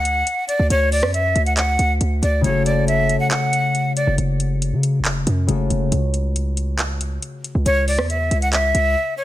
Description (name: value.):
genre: hip hop, trap.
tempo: 138 BPM.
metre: 4/4.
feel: half-time.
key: F# minor.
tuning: A4 = 435 Hz.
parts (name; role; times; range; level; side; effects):
breathy bright jazz flute; melody; 0.0-4.2, 7.7-9.2 s; C#5 to F#5; -20 LUFS; equal; none.
hard-hitting 808-style bass; bass; 0.0-9.0 s; F#1 to C#3; -20 LUFS; right 1 dB; none.
trap drum kit; drums; 0.1-8.8 s; handclaps, hi-hat, rim click; -24 LUFS; equal; vintage 12-bit sampler grit.
concert harp; accompaniment; 2.4-6.0 s; C#3 to A4; -22 LUFS; left 3 dB; none.
room: studio reverb.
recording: none.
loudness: -17 LUFS.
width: side -14 dB against mid.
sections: 0.0-9.2 A section.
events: break 4.2-7.7, 9.0.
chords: 0.0 D; 2.4 F#m; 5.9 C#m.